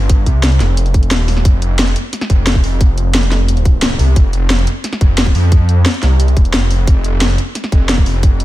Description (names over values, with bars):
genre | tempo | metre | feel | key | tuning
dark technical drum and bass | 177 BPM | 4/4 | straight | unclear | A4 = 442 Hz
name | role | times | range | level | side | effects
wide detuned saw bass | bass | 0.0-8.4 s | Eb1 to F2 | -13 LUFS | equal | chorus, overdrive, sidechain pumping
drum and bass drum kit | drums | 0.1-8.4 s | hi-hat, snare drum | -18 LUFS | equal | none
electronic kick drum | drums | 0.1-8.3 s | none | -10 LUFS | equal | none
room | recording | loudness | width
little or no reverb | none | -10 LUFS | side -16 dB against mid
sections
0.0-8.4 A section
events
none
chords
none